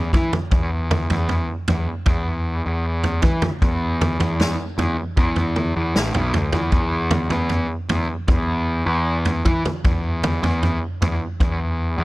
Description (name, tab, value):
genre	psychedelic rock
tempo	77 BPM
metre	4/4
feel	straight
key	unclear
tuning	A4 = 440 Hz
part	fuzz picked electric bass	bass	0.0-12.0 s	A1 to E3	-21 LUFS	equal	overdrive
part	vintage drum kit	drums	0.1-11.6 s	kick drum, snare drum, toms	-21 LUFS	equal	none
room	little or no reverb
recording	none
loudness	-18 LUFS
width	side -20 dB against mid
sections	0.0-12.0 A section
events	none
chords	none